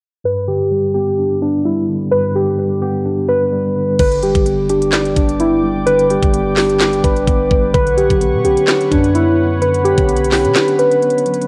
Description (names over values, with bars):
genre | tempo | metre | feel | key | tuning
hip hop, trap | 128 BPM | 4/4 | half-time | unclear | A4 = 440 Hz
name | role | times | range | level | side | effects
mellow tine electric piano | accompaniment | 0.2-11.5 s | G2 to D5 | -22 LUFS | equal | low-pass filter, cassette tape
muted felt-like synth keys | melody | 0.3-11.5 s | D4 to B4 | -17 LUFS | equal | chorus, low-pass filter, cassette tape
warm analog pad | sustained chords | 4.0-11.5 s | B4 to D6 | -26 LUFS | equal | chorus, cassette tape
warm 808-style bass | bass | 4.0-10.6 s | G1 to B2 | -25 LUFS | equal | none
trap drum kit | drums | 4.0-11.5 s | crash cymbal, handclaps, hi-hat, kick drum, snare drum | -20 LUFS | equal | cassette tape
room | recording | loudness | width
light reverb | home recording on cassette | -15 LUFS | mono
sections
0.2-4.0 A section; 4.0-11.5 B section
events
filter sweep 0.2-4.0; kick muted 10.6-11.5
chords
0.2 G; 7.7 Bmadd9